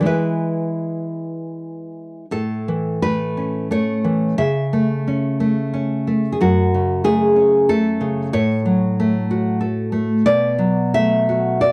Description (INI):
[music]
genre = romantic piece for solo classical guitar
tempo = 77-96 BPM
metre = 3/4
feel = rubato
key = A major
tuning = A4 = 439 Hz
[part]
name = nylon-string guitar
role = solo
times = 0.0-11.7 s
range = F#2 to E5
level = -19 LUFS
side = equal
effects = none
[sound]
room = light reverb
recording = dry, close 1970s-style studio recording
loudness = -19 LUFS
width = mono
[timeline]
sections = 0.0-2.3 A section; 2.3-11.7 B section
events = none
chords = 0.1 E; 2.3 A; 4.4 A/C#; 6.4 F#m; 8.3 F#m/A; 10.3 Bm7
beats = | 0.07 0.83 1.58 | 2.32 3.02 3.70 | 4.38 5.06 5.72 | 6.39 7.03 7.67 | 8.31 8.98 9.62 | 10.26 10.93 11.60